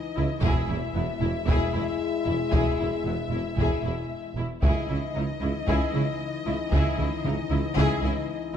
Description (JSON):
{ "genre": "cinematic, epic orchestral film score", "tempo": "114 BPM", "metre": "4/4", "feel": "straight", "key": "C# minor", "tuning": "A4 = 442 Hz", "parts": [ { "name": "clear symphonic violin section", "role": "melody", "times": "0.0-8.6 s", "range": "D#5 to E5", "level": "-36 LUFS", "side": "left 6 dB", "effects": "none" }, { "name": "mellow French horn section", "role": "sustained chords", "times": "0.0-8.6 s", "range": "E3 to E4", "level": "-32 LUFS", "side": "left 6 dB", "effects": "none" }, { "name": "clear symphonic violin section", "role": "second line", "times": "0.2-8.1 s", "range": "B3 to G#4", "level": "-34 LUFS", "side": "left 3 dB", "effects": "none" }, { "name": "rich symphonic viola section", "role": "accompaniment", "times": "0.2-8.6 s", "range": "E4", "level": "-34 LUFS", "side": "left 1 dB", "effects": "none" }, { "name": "clear studio double bass section", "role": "bass", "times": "0.2-8.1 s", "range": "E1 to C#2", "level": "-31 LUFS", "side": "right 3 dB", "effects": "none" }, { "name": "mellow tuba", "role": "bass", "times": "0.2-8.1 s", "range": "E1 to C#2", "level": "-33 LUFS", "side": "right 3 dB", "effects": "none" }, { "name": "rich symphonic cello section", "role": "bass", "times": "0.2-8.1 s", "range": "C#2 to C#3", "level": "-33 LUFS", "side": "right 2 dB", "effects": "none" }, { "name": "taiko ensemble", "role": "drums", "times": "0.4-8.3 s", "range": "none", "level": "-27 LUFS", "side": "left 1 dB", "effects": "none" } ], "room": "moderate scoring stage reverb, RT60 1.6 s", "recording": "dark, warm production", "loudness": "-24 LUFS", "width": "side -9 dB against mid", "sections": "0.0-8.6 A section", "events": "none", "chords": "0.4 E; 4.6 C#madd9" }